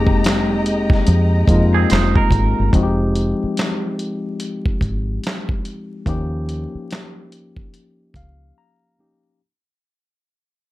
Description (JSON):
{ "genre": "R&B, neo-soul", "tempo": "72 BPM", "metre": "4/4", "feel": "swing 62% on 16ths", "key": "F minor", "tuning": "A4 = 439 Hz", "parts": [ { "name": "barky tine electric piano", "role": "accompaniment", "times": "0.0-9.4 s", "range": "F3 to Bb5", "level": "-22 LUFS", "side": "left 2 dB", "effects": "overdrive, auto-pan" }, { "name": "warm studio string section", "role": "sustained chords", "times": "0.0-2.7 s", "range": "Ab3 to Bb5", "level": "-26 LUFS", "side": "equal", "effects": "none" }, { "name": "deep dub fingered electric bass", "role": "bass", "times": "0.0-8.5 s", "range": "F1 to F2", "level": "-19 LUFS", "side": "equal", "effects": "none" }, { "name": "dusty soul sampler-style drum kit", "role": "drums", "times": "0.1-8.4 s", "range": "handclaps, hi-hat, kick drum, snare drum", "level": "-19 LUFS", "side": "equal", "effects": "none" }, { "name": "semi-hollow electric guitar", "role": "second line", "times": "1.7-2.7 s", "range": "C4 to C5", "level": "-22 LUFS", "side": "right 8 dB", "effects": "spring reverb" } ], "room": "moderate small room ambience, RT60 0.5 s", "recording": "dark, warm production, vinyl crackle", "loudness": "-16 LUFS", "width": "side -16 dB against mid", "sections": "0.0-2.7 A section; 2.7-9.4 B section", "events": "fade-out 2.7-9.4; tine electric piano fill 7.7-9.4; break 8.6-9.4", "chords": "0.0 Fm11; 2.7 Fm9; 6.1 Eb7", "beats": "0.22 1.06 1.89 | 2.72 3.56 4.39 5.22 | 6.06 6.89 7.72 8.56" }